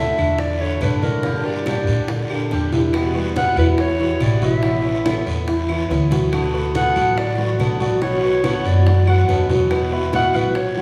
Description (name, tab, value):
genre	latin, Cuban son and guajira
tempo	142 BPM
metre	4/4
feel	straight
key	D major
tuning	A4 = 442 Hz
part	growling clarinet	melody	0.0-10.8 s	Bb4 to F#5	-25 LUFS	equal	none
part	picked swing-style acoustic guitar	accompaniment	0.0-10.8 s	B2 to G4	-26 LUFS	equal	none
part	dark baby grand piano	arpeggios	0.0-10.8 s	D3 to F#5	-25 LUFS	equal	none
part	upright bass	bass	0.0-10.8 s	A1 to Bb2	-24 LUFS	equal	none
part	bongos	percussion	0.2-10.8 s	none	-33 LUFS	equal	none
part	claves	percussion	0.2-10.6 s	none	-40 LUFS	equal	none
part	congas	percussion	0.2-10.8 s	none	-29 LUFS	equal	none
part	guiro	percussion	0.2-10.8 s	none	-38 LUFS	equal	none
room	wet scoring stage reverb, RT60 1.6 s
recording	recorded in a church or concert hall, small room ambience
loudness	-19 LUFS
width	mono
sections	0.0-10.8 A section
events	drum fill 6.1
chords	0.0 Dsus2; 1.2 Gm; 2.9 Emadd9; 4.6 Aadd9; 6.3 D6; 8.0 Bmadd9; 9.7 Esus2